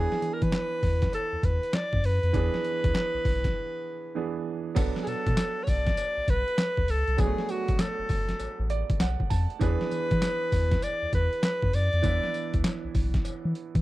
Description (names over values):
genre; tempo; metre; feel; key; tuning
R&B, new jack swing; 99 BPM; 4/4; swing 65% on 16ths; B dorian; A4 = 440 Hz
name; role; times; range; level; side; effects
clear alto saxophone; melody; 0.0-12.6 s; F#4 to D5; -29 LUFS; equal; slapback echo
clear concert grand piano; accompaniment; 0.0-13.8 s; E3 to A5; -34 LUFS; right 8 dB; none
round analog bass; bass; 0.0-13.8 s; F#1 to E3; -27 LUFS; equal; none
boom bap sampler-style drum kit; drums; 0.1-13.8 s; crash cymbal, handclaps, hi-hat, kick drum, snare drum, tambourine; -28 LUFS; equal; overdrive
cowbell; percussion; 0.5-13.4 s; none; -47 LUFS; left 6 dB; none
room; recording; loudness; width
little or no reverb; dry, close 1970s-style studio recording; -24 LUFS; side -17 dB against mid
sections
0.0-4.8 A section; 4.8-13.8 B section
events
break 3.6-4.8; grand piano fill 8.4-9.6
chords
0.0 E7; 4.8 Bm7; 9.6 E7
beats
0.52 1.13 1.73 | 2.34 2.94 3.55 4.16 | 4.76 5.37 5.98 6.58 | 7.19 7.79 8.40 9.01 | 9.61 10.22 10.82 11.43 | 12.04 12.64 13.25